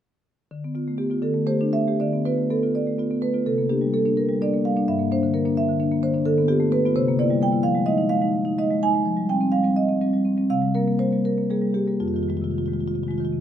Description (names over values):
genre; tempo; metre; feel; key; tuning
classical, contemporary piece for solo marimba; 75-87 BPM (dotted quarters); 6/8; rubato; D minor, F minor from 7.6 s; A4 = 444 Hz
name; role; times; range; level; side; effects
marimba with medium mallets; solo; 0.5-13.4 s; F2 to Ab5; -20 LUFS; equal; none
room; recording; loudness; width
moderate recital hall reverb, RT60 1.4 s; close, detailed microphones; -20 LUFS; side -10 dB against mid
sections
0.5-2.0 A section; 2.0-13.4 B section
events
none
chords
0.5 Dm6; 1.2 D9sus4; 2.0 Dm6; 3.4 Csus2; 4.9 Gm6; 6.3 Dm6; 7.0 C7; 7.6 Fm7; 9.0 Fm9; 10.5 C5; 12.0 Fm7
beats
| 0.51 1.25 | 2.01 2.74 | 3.45 4.16 | 4.86 5.55 | 6.25 6.95 | 7.64 8.34 | 9.05 9.77 | 10.50 11.24 | 12.01 12.80